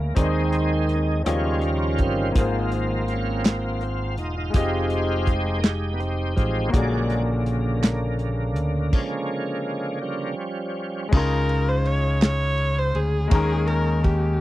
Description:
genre	slow gospel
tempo	55 BPM (dotted quarters)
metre	6/8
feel	straight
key	Ab major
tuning	A4 = 440 Hz
part	bright grand piano	accompaniment	0.0-14.4 s	Ab2 to C6	-28 LUFS	left 3 dB	none
part	bright tonewheel organ	sustained chords	0.0-11.1 s	Db3 to D5	-26 LUFS	right 2 dB	slow rotary speaker, overdrive, chorus vibrato
part	fingered electric bass	bass	0.0-14.4 s	Fb1 to Eb2	-24 LUFS	equal	none
part	warm soul drum kit	drums	0.2-14.2 s	crash cymbal, hi-hat, kick drum, ride cymbal, rim click, snare drum	-20 LUFS	equal	none
part	group handclap	percussion	3.5-8.2, 12.2-12.6 s	none	-33 LUFS	right 16 dB	none
part	warm viola	melody	11.1-14.4 s	G4 to Db5	-26 LUFS	equal	none
room	little or no reverb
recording	dry, close 1970s-style studio recording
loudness	-21 LUFS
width	side -15 dB against mid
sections	0.0-11.1 A section; 11.1-14.4 B section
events	tonewheel organ solo 0.0-11.1; stop 8.9-11.1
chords	0.2 Ab/Eb; 1.3 Eb9; 2.4 Ab69; 4.5 Fm9; 6.7 Bb7alt; 8.9 Bb7#9/C#; 10.0 Fsus2; 11.1 Dbmaj9; 13.3 Eb7sus4

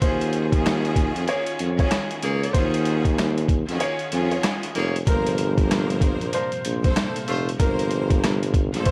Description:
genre	hip hop, boom-bap hip-hop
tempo	95 BPM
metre	4/4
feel	swing 61% on 16ths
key	unclear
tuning	A4 = 440 Hz
part	warm upright piano	melody	0.0-8.9 s	Bb4 to Db5	-32 LUFS	equal	tape echo
part	bright studio string section	accompaniment	0.0-8.9 s	G2 to C5	-32 LUFS	equal	none
part	mellow tuba	bass	0.0-8.8 s	F1 to F2	-26 LUFS	equal	none
part	boom bap sampler-style drum kit	drums	0.0-8.9 s	hi-hat, kick drum, rim click, snare drum	-26 LUFS	equal	none
part	clear horn section	stabs	1.3-8.9 s	F3 to Db5	-33 LUFS	equal	tape echo
part	tonewheel organ	sustained chords	5.1-8.9 s	Bb2 to F5	-38 LUFS	equal	none
room	little or no reverb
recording	dry, gritty hardware recording, vinyl crackle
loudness	-22 LUFS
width	mono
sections	0.0-8.9 A section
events	break 3.8-5.1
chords	0.0 Ebm11; 5.1 Gm11

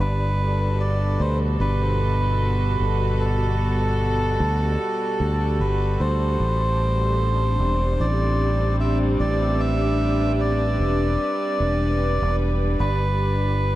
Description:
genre	ambient dub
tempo	75 BPM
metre	4/4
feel	swing 55% on 16ths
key	A dorian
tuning	A4 = 440 Hz
part	melodica	melody	0.0-13.8 s	A4 to E5	-26 LUFS	right 1 dB	dub echo
part	warm studio string section	sustained chords	0.0-13.8 s	B2 to D5	-26 LUFS	equal	none
part	fingered electric bass	bass	0.0-13.8 s	E1 to D2	-22 LUFS	equal	none
room	light reverb, studio ambience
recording	echo-heavy mix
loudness	-19 LUFS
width	side -15 dB against mid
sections	0.0-13.8 A section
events	none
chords	0.0 Gmaj9; 6.4 Am11; 12.8 G

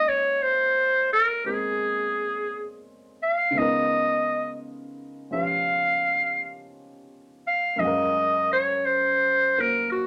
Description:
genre	jazz ballad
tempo	57 BPM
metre	4/4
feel	swing 67% on 8ths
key	unclear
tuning	A4 = 442 Hz
part	clear clarinet	melody	0.0-10.1 s	Gb4 to F5	-24 LUFS	equal	none
part	warm upright piano	accompaniment	0.0-10.1 s	Gb2 to F5	-35 LUFS	equal	none
room	moderate small room reverb, RT60 0.5 s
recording	none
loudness	-24 LUFS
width	mono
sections	0.0-10.1 A section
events	none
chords	0.0 Bbm11; 3.6 Db13; 7.8 Gbmaj7

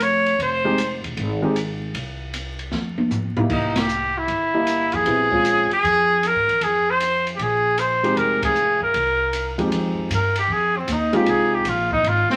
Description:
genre	jazz, small-group swing and bop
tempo	155 BPM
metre	4/4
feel	swing 66% on 8ths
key	F minor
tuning	A4 = 440 Hz
part	breathy trumpet	melody	0.0-1.0, 3.5-12.4 s	C4 to Db5	-21 LUFS	equal	none
part	upright bass	bass	0.0-12.3 s	E1 to Ab2	-31 LUFS	equal	none
part	open jazz drum kit	drums	0.0-12.4 s	crash cymbal, hi-hat, kick drum, ride cymbal, snare drum, toms	-31 LUFS	equal	none
part	warm concert grand piano	accompaniment	0.6-5.7, 8.0-11.6 s	F2 to D#5	-24 LUFS	equal	none
room	moderate large studio reverb, RT60 0.9 s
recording	vinyl crackle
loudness	-20 LUFS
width	mono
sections	0.0-9.7 A section; 9.7-12.4 B section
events	drum fill 2.7-3.5; band accent 3.7, 8.4; trumpet solo 9.7-12.4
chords	0.4 Fm; 3.5 C7#9; 5.1 Bbm7; 6.6 F5; 7.4 Bb13sus4; 8.2 Fm7; 8.9 Cm7; 9.7 Fm7

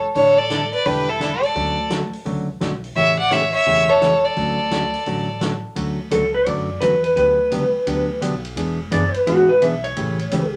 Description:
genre	country, western swing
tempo	171 BPM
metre	4/4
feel	swing 64% on 8ths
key	D major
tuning	A4 = 440 Hz
part	clear fiddle	melody	0.0-5.4 s	A4 to F#5	-20 LUFS	equal	none
part	rich fiddle	second line	0.0-5.4 s	E4 to D5	-27 LUFS	equal	none
part	upright bass	bass	0.1-10.6 s	E1 to F#2	-32 LUFS	equal	none
part	hollow-body jazz guitar	accompaniment	0.2-10.4 s	C#3 to A4	-26 LUFS	equal	none
part	swinging big-band drum kit	drums	0.2-10.4 s	hi-hat, ride cymbal, snare drum	-35 LUFS	equal	none
part	clean lap steel guitar	second line	6.1-10.5 s	F#4 to E5	-20 LUFS	equal	none
room	wet studio ambience, RT60 0.5 s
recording	none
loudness	-19 LUFS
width	mono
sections	0.0-5.8 A section; 5.8-10.6 B section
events	electric slide guitar solo 5.8-10.6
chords	0.1 A7sus4; 1.6 Dmaj7; 3.0 A7; 4.4 Dmaj7; 7.2 Gmaj7; 8.6 E7; 10.0 A7

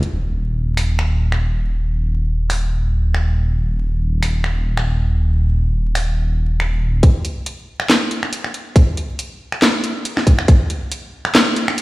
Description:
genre	deep dubstep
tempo	139 BPM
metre	4/4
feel	swing 55% on 16ths, half-time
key	unclear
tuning	A4 = 440 Hz
part	garage drum kit	drums	0.0-11.8 s	finger snaps, handclaps, hi-hat, snare drum	-18 LUFS	equal	none
part	dark detuned saw bass	bass	0.1-7.0 s	Eb1	-17 LUFS	equal	none
part	electronic kick drum	drums	7.0-10.6 s	none	-11 LUFS	equal	none
room	light reverb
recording	played on a big sound system in a bare room, stone room reverb, vinyl crackle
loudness	-16 LUFS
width	side -19 dB against mid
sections	0.1-7.0 A section; 7.0-11.8 B section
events	build-up 7.0-11.8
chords	none

